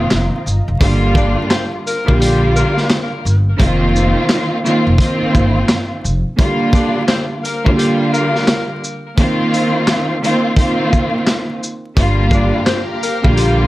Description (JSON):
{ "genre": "hip hop, boom-bap hip-hop", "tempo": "86 BPM", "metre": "4/4", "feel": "swing 62% on 16ths", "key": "G minor", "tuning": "A4 = 439 Hz", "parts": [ { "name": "dark studio string section", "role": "accompaniment", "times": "0.0-13.7 s", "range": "D3 to F4", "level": "-16 LUFS", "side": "right 1 dB", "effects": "cassette tape, high-pass filter, low-pass filter" }, { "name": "lush unison pad", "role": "sustained chords", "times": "0.0-0.8, 12.2-13.7 s", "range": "F4 to Bb5", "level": "-27 LUFS", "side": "equal", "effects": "chorus, phaser, high-pass filter, low-pass filter" }, { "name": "upright bass", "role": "bass", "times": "0.0-6.2, 12.0-13.7 s", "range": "F1 to Bb1", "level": "-16 LUFS", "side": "equal", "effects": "none" }, { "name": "crunchy breakbeat drum kit", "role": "drums", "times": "0.1-13.6 s", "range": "handclaps, hi-hat, kick drum, shaker, snare drum", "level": "-16 LUFS", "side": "equal", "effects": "vintage 12-bit sampler grit" }, { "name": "edgy saxophone section", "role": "stabs", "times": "1.2-13.6 s", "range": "G3 to D5", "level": "-22 LUFS", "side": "left 3 dB", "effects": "high-pass filter, low-pass filter, tape echo" } ], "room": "light reverb", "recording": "vinyl crackle", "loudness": "-13 LUFS", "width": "side -17 dB against mid", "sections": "0.8-13.7 A section", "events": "none", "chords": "0.0 F7sus4; 0.8 Gm7; 3.6 F7sus4; 6.4 Gm7; 9.2 F7sus4; 12.0 Gm7" }